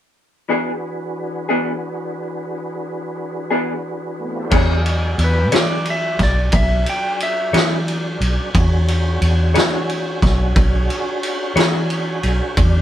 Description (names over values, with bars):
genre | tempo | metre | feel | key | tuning
slow blues | 60 BPM (dotted quarters) | 12/8 | straight | E mixolydian | A4 = 441 Hz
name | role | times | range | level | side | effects
electric guitar through a small old amp | accompaniment | 0.5-11.8 s | E3 to C#5 | -19 LUFS | left 2 dB | tremolo
tonewheel organ | sustained chords | 0.5-12.8 s | E3 to D5 | -26 LUFS | right 1 dB | slow rotary speaker, overdrive, chorus vibrato
vintage muted fingered electric bass | bass | 4.5-12.8 s | B1 to E3 | -18 LUFS | equal | none
vintage drum kit | drums | 4.5-12.7 s | crash cymbal, kick drum, ride cymbal, snare drum | -19 LUFS | equal | none
clean lap steel guitar | melody | 5.2-7.9 s | B4 to G5 | -21 LUFS | equal | none
room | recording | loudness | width
moderate studio reverb, RT60 0.6 s | band playing live in one room | -16 LUFS | side -11 dB against mid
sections
0.5-4.5 A section; 4.5-12.8 B section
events
electric slide guitar solo 4.5-12.8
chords
0.5 E7; 4.5 E13